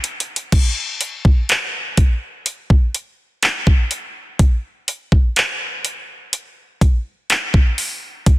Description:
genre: R&B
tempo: 62 BPM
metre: 4/4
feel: straight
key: none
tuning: none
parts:
  - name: smooth R&B drum kit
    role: drums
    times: 0.0-8.4 s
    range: crash cymbal, handclaps, hi-hat, kick drum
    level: -15 LUFS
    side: equal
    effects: none
room: little or no reverb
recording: dense, heavily limited modern master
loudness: -16 LUFS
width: side -18 dB against mid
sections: 0.5-8.4 A section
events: none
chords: none

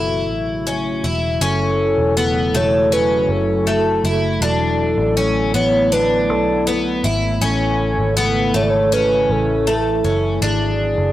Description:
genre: dream pop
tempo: 80 BPM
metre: 4/4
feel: straight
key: F# minor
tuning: A4 = 442 Hz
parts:
  - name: hollow clarinet-like synth lead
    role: melody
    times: 0.0-11.1 s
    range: G#4 to D5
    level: -20 LUFS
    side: equal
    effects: chorus, analog delay
  - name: warbly tape-like pad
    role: sustained chords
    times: 0.0-11.1 s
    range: C#3 to F#4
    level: -23 LUFS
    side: equal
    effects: chorus, built-in reverb
  - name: picked twelve-string acoustic guitar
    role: arpeggios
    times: 0.0-11.1 s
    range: A3 to E4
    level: -20 LUFS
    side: left 1 dB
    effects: lush chorus, analog delay
  - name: vintage muted picked electric bass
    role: bass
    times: 0.0-11.1 s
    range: E1 to B1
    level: -22 LUFS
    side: right 1 dB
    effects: none
room: little or no reverb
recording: dry, gritty hardware recording, transformer saturation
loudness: -15 LUFS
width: side -14 dB against mid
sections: 0.0-1.4 A section; 1.4-11.1 B section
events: none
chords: 0.0 F#m7; 4.4 E9sus4; 7.4 Amaj7; 10.4 G#m7b5

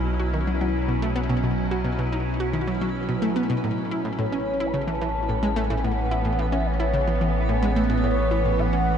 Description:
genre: ambient, sequencer-driven space music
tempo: 109 BPM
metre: 4/4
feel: straight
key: A major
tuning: A4 = 440 Hz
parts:
  - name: evolving wavetable pad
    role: sustained chords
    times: 0.0-9.0 s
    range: A2 to E4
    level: -27 LUFS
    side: right 1 dB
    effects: chorus, built-in reverb, phaser, shimmer reverb
  - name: round analog bass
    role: bass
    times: 0.0-9.0 s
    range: A1 to B1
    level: -27 LUFS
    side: equal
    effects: none
  - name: twinkling granular texture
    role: texture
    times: 0.1-9.0 s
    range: B4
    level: -36 LUFS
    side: right 6 dB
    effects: built-in reverb, shimmer reverb
  - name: analog pluck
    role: riff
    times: 0.2-8.8 s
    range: A2 to F#4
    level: -27 LUFS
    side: equal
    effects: chorus, ping-pong delay
  - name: expressive synth lead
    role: melody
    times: 4.2-9.0 s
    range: C#5 to B5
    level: -28 LUFS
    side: left 2 dB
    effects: analog chorus, vintage 12-bit sampler grit, shimmer reverb, ping-pong delay
room: wet huge ambient reverb, RT60 7.9 s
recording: dark, warm production, nothing above 10.4 kHz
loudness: -22 LUFS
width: side -8 dB against mid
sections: 0.0-9.0 A section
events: fade-in on synth texture 0.0-9.0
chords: 0.0 Bsus4; 3.6 A

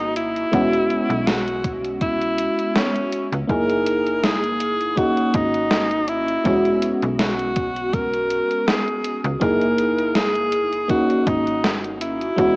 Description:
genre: vaporwave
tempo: 81 BPM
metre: 4/4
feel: swing 55% on 16ths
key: E lydian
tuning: A4 = 442 Hz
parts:
  - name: bright alto saxophone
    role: melody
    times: 0.0-12.6 s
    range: C#4 to A#4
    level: -22 LUFS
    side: equal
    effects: tape echo
  - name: FM electric piano with soft pad layer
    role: accompaniment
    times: 0.0-12.6 s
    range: G#3 to G#4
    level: -22 LUFS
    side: equal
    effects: analog chorus
  - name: slap-like FM bass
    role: bass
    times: 0.0-12.6 s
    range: D#1 to C#2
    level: -30 LUFS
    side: equal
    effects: none
  - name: gated 80s digital drum machine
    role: drums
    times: 0.2-12.5 s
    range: hi-hat, snare drum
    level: -23 LUFS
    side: equal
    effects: gated reverb, gated reverb snare
  - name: electronic kick drum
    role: drums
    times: 0.5-12.5 s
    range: none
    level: -26 LUFS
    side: equal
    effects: none
room: light reverb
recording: worn, warbling old tape, cassette tape, warbly pitch drift, small speaker sound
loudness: -18 LUFS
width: side -27 dB against mid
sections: 0.0-12.6 A section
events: none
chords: 0.0 D#m7; 0.5 E69; 3.5 F#13; 5.0 D#m7; 6.5 E69; 9.4 F#13; 10.9 D#m7

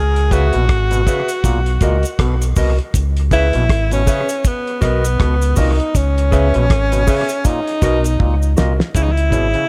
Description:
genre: roots reggae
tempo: 80 BPM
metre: 4/4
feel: swing 60% on 16ths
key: C# dorian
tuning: A4 = 442 Hz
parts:
  - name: breathy tenor saxophone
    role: melody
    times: 0.0-9.7 s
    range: B3 to G#4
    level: -22 LUFS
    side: equal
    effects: dub echo
  - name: deep dub fingered electric bass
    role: bass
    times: 0.0-9.5 s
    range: G#1 to C#2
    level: -18 LUFS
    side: equal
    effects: none
  - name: cloth-damped thuddy drum kit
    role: drums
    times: 0.2-9.7 s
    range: hi-hat, kick drum, rim click, snare drum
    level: -20 LUFS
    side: equal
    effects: none
  - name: mellow electric guitar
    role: accompaniment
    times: 0.3-9.5 s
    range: E4 to E5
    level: -27 LUFS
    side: equal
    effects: subtle chorus, dub echo
  - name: overdriven clav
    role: arpeggios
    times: 0.3-9.7 s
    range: A#2 to C#3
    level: -28 LUFS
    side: equal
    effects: none
  - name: cabasa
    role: percussion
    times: 0.3-9.5 s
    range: none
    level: -34 LUFS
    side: equal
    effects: none
room: small room ambience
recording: none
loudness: -16 LUFS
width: mono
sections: 0.0-8.9 A section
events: drum fill 8.2-8.9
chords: 0.0 C#m7; 1.4 Bmaj7; 2.9 C#m7; 4.4 Bmaj7; 5.9 C#m7; 7.4 Bmaj7; 8.9 C#m

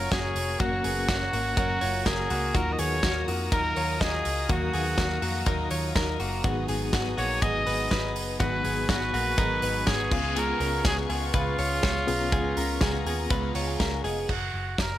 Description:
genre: jangly indie pop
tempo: 123 BPM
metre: 4/4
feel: straight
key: F# major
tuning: A4 = 440 Hz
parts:
  - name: clear trumpet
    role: melody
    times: 0.0-15.0 s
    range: E#4 to D#5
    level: -30 LUFS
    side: equal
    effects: digital delay
  - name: fingerpicked twelve-string acoustic guitar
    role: accompaniment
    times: 0.0-14.3 s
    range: G#2 to A#4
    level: -35 LUFS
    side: right 6 dB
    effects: none
  - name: reed electric piano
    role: accompaniment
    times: 0.0-14.3 s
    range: A#3 to A#5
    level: -37 LUFS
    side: left 6 dB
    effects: fast tremolo
  - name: dark studio string section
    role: sustained chords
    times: 0.0-14.3 s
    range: B3 to D#6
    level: -38 LUFS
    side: left 4 dB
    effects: none
  - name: direct-recorded clean electric guitar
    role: arpeggios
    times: 0.0-14.3 s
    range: G#3 to D#5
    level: -32 LUFS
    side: left 4 dB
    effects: spring reverb
  - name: vintage muted picked electric bass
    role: bass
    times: 0.0-15.0 s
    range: E#1 to E#2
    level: -32 LUFS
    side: equal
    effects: none
  - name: loose indie drum kit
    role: drums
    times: 0.1-14.9 s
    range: crash cymbal, hi-hat, kick drum, ride cymbal, snare drum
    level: -29 LUFS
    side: equal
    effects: none
room: light reverb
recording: none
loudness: -24 LUFS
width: side -13 dB against mid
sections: 0.0-14.3 A section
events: reed electric piano fill 13.3-14.3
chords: 0.0 F#; 2.5 D#madd9; 6.4 G#m7; 10.1 C#7; 14.3 F#

